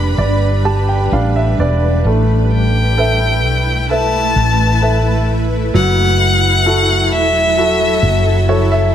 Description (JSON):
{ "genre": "pop", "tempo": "65 BPM", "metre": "4/4", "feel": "straight", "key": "unclear", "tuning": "A4 = 439 Hz", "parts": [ { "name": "rich violin", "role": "melody", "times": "0.0-8.9 s", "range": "E5 to B5", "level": "-16 LUFS", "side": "left 2 dB", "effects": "none" }, { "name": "clear baby grand piano", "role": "accompaniment", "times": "0.0-8.9 s", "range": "F#3 to A5", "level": "-19 LUFS", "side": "right 1 dB", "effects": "none" }, { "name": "shimmering ambient pad", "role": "sustained chords", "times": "0.0-8.9 s", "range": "F#3 to B4", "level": "-20 LUFS", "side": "equal", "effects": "chorus, built-in reverb" }, { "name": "woody fretless electric bass", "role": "bass", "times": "0.0-8.9 s", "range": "E1 to B1", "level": "-15 LUFS", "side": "equal", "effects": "analog chorus" } ], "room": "light reverb, studio reverb", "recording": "none", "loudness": "-11 LUFS", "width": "side -10 dB against mid", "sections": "0.0-2.0 A section; 2.0-8.9 B section", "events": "grand piano fill 0.2-2.0, 8.0-8.9", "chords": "0.0 G; 2.0 Asus2; 5.7 F#m7" }